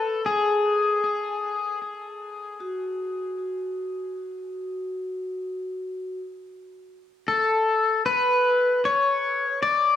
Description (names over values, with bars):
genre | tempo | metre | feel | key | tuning
ambient | 77 BPM | 3/4 | straight | unclear | A4 = 440 Hz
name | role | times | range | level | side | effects
pedal steel guitar | melody | 0.0-1.8, 7.3-10.0 s | G#4 to D5 | -21 LUFS | left 2 dB | cassette tape, plate reverb, tape echo
vibraphone with medium hard mallets | arpeggios | 2.6-6.2 s | F#4 | -31 LUFS | equal | cassette tape, tape echo
room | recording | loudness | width
wet small room reverb, RT60 0.6 s | home recording on cassette | -22 LUFS | side -10 dB against mid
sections
0.0-2.6 A section; 2.6-10.0 B section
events
fade-in on vibraphone 2.6-10.0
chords
none